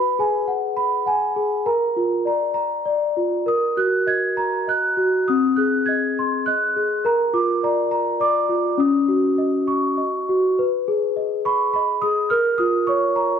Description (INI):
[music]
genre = children's music, lullaby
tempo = 102 BPM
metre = 3/4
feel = rubato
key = unclear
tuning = A4 = 443 Hz
[part]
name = large celesta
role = solo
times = 0.0-13.4 s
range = C4 to Ab6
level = -18 LUFS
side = equal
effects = none
[sound]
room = moderate concert hall reverb, RT60 2.2 s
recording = none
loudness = -18 LUFS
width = side -8 dB against mid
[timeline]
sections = 0.0-10.6 A section; 10.6-13.4 B section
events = none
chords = 0.0 Abm7; 1.7 Bb5; 2.3 Bb; 3.5 Ebm; 5.3 Ab; 7.0 Bb; 8.8 Ebm7; 10.6 Abm; 12.3 Bbm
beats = 0.50 1.08 | 1.67 2.26 2.86 | 3.47 4.07 4.68 | 5.27 5.87 6.46 | 7.04 7.62 8.20 | 8.78 9.37 9.98 | 10.58 11.17 11.74 | 12.32 12.89